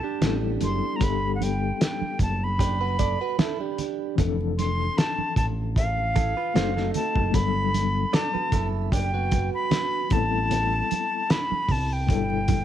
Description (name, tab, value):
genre	lush 1970s-style soul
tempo	76 BPM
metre	4/4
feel	swing 54% on 16ths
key	G major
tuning	A4 = 441 Hz
part	breathy bright concert flute	melody	0.0-12.6 s	F5 to C6	-28 LUFS	left 1 dB	none
part	reed electric piano	accompaniment	0.0-12.6 s	B2 to A4	-31 LUFS	left 11 dB	fast tremolo
part	direct-recorded clean electric guitar	riff	0.0-10.1 s	B3 to D5	-31 LUFS	right 14 dB	phaser
part	fingered electric bass	bass	0.2-12.6 s	F1 to C2	-27 LUFS	equal	none
part	cloth-damped thuddy drum kit	drums	0.2-12.6 s	hi-hat, kick drum, snare drum	-26 LUFS	equal	none
part	congas	percussion	0.2-12.6 s	none	-33 LUFS	right 11 dB	none
room	small room ambience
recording	1960s-style stereo with parts hard left and right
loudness	-22 LUFS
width	side -11 dB against mid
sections	0.0-12.6 A section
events	none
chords	0.0 Am7; 1.0 Gmaj7; 4.2 Dm7/F; 6.6 F#dim7; 7.3 Gmaj7; 10.1 Am7; 12.1 G6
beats	0.22 | 1.01 1.80 2.59 3.38 | 4.18 4.97 5.76 6.55 | 7.34 8.13 8.93 9.72 | 10.51 11.30 12.09